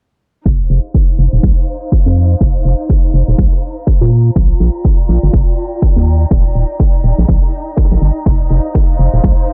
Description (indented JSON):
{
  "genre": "piano house",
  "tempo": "123 BPM",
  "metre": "4/4",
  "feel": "swing 58% on 16ths",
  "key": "unclear",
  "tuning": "A4 = 442 Hz",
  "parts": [
    { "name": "organ-like FM bass", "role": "bass", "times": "0.5-9.3 s", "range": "Eb1 to Bb2", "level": "-14 LUFS", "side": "equal", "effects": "tube saturation, sidechain pumping" },
    { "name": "electronic kick drum", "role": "drums", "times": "0.5-9.3 s", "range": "none", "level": "-14 LUFS", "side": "equal", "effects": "none" },
    { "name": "modern studio drum kit", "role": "drums", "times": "0.5-9.5 s", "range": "hi-hat, snare drum", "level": "-33 LUFS", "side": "equal", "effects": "high-pass filter on hats, high-pass filter on snare, high-pass filter on room" },
    { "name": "dark chamber string section", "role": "texture", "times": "0.5-9.5 s", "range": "Eb4 to Bb5", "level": "-26 LUFS", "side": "equal", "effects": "sidechain pumping" },
    { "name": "electronic hi-hat", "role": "drums", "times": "0.7-9.5 s", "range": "none", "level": "-62 LUFS", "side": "equal", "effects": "none" }
  ],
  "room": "small room ambience",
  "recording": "low-pass filter",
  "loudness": "-12 LUFS",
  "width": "mono",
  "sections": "0.5-9.5 A section",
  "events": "filter sweep on FM bass 0.5-9.5; filter sweep 0.5-9.5",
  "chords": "0.5 F7sus4; 4.1 Bb6; 6.1 Ebmaj7; 8.3 F7sus4"
}